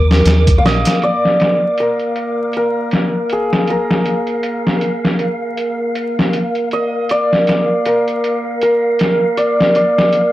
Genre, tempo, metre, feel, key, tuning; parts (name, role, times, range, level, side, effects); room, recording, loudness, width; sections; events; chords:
trip hop; 79 BPM; 4/4; swing 57% on 16ths; A4 = 443 Hz
santur; melody; 0.0-10.3 s; Ab4 to F5; -16 LUFS; equal; vintage 12-bit sampler grit, dub echo
dark analog pad; sustained chords; 0.0-10.3 s; Bb4; -20 LUFS; right 2 dB; chorus
deep dub fingered electric bass; bass; 0.0-0.8 s; Bb1 to Eb2; -13 LUFS; equal; transformer saturation
wind-like tuned noise texture; texture; 0.0-10.3 s; F5 to D6; -26 LUFS; left 2 dB; built-in reverb
trip hop sampler-style drum kit; drums; 0.1-10.3 s; hi-hat, kick drum, snare drum; -16 LUFS; equal; overdrive, low-pass filter on hats, low-pass filter on kick, low-pass filter on snare, low-pass filter on room
digital ambience; dry, gritty hardware recording, vinyl crackle; -13 LUFS; side -15 dB against mid
0.0-1.0 A section; 1.0-10.3 B section
0.0 Eb5; 1.0 Bb